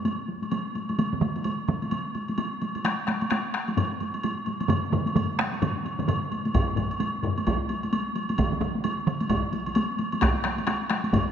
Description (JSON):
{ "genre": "japanese traditional, taiko drum ensemble", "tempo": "130 BPM", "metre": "4/4", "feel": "swing 60% on 16ths", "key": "none", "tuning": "none", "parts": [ { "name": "taiko ensemble", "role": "percussion", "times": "0.0-11.3 s", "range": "none", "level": "-28 LUFS", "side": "equal", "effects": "none" }, { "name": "woodblock", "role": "percussion", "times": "0.1-11.3 s", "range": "none", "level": "-33 LUFS", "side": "right 2 dB", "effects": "none" }, { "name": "taiko ensemble", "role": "percussion", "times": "1.0-1.8, 4.7-9.2 s", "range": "none", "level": "-29 LUFS", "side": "right 4 dB", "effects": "none" }, { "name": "taiko ensemble", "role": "percussion", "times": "2.9-7.4, 10.2-11.3 s", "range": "none", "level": "-30 LUFS", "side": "left 4 dB", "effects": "none" }, { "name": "taiko ensemble", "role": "percussion", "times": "6.5-11.3 s", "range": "none", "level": "-28 LUFS", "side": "right 1 dB", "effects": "none" } ], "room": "wet scoring stage reverb, RT60 1.8 s", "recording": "none", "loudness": "-24 LUFS", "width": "side -8 dB against mid", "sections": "0.0-11.3 A section", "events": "none", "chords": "none", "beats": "0.05 0.52 | 0.98 1.45 1.92 2.38 | 2.85 3.31 3.77 4.24 | 4.70 5.16 5.62 6.08 | 6.54 7.00 7.46 7.92 | 8.38 8.84 9.30 9.76 | 10.21 10.67 11.13" }